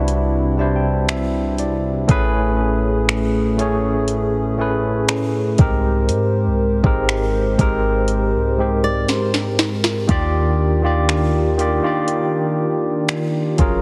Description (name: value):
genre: contemporary R&B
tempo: 60 BPM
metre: 4/4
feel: straight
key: unclear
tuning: A4 = 440 Hz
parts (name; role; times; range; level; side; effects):
- barky tine electric piano; accompaniment; 0.0-13.8 s; Ab2 to A5; -22 LUFS; equal; none
- hollow soft pad; sustained chords; 0.0-13.8 s; C3 to C5; -26 LUFS; equal; chorus, sidechain pumping
- clean 808-style bass; bass; 0.0-13.8 s; Gb1 to Ab2; -24 LUFS; equal; none
- smooth R&B drum kit; drums; 0.1-13.8 s; finger snaps, hi-hat, kick drum, snare drum; -21 LUFS; equal; overdrive, vintage 12-bit sampler grit
- flamenco guitar; arpeggios; 8.8-10.1 s; Bb4 to D5; -28 LUFS; equal; digital delay
room: light reverb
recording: heavily compressed radio sound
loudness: -18 LUFS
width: mono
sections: 0.0-10.1 A section; 10.1-13.8 B section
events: tine electric piano fill 0.1-2.1; drum fill 9.1-10.1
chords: 0.0 Cmaj9; 2.1 Amaj9; 5.6 Abmaj9; 10.1 Ebmaj9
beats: 0.09 1.09 | 2.09 3.09 4.09 5.09 | 6.09 7.09 8.09 9.09 | 10.09 11.09 12.09 13.09